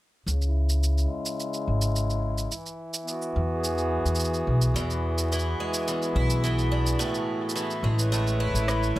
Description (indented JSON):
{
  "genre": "folktronica",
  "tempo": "107 BPM",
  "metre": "4/4",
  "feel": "straight",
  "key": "E major",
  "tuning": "A4 = 440 Hz",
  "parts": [
    { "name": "hand-pumped harmonium", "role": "sustained chords", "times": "0.3-9.0 s", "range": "C#3 to C#5", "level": "-30 LUFS", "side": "equal", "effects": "low-pass filter" },
    { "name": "upright bass", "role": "bass", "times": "0.3-9.0 s", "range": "E1 to E2", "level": "-25 LUFS", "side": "equal", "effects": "none" },
    { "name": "electronic shaker and rim click", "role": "drums", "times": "0.3-8.9 s", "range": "none", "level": "-33 LUFS", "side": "right 2 dB", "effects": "none" },
    { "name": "picked twelve-string acoustic guitar", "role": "arpeggios", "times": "4.8-9.0 s", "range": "E2 to E4", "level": "-29 LUFS", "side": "equal", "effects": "tape echo" }
  ],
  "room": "light reverb",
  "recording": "none",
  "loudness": "-24 LUFS",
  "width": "side -16 dB against mid",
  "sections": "0.3-9.0 A section",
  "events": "filter sweep on upright bass 0.3-9.0; filter sweep on harmonium 0.3-9.0; drum fill 8.7-9.0",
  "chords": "0.3 C#m; 2.5 E; 4.8 E7; 7.0 Amaj7"
}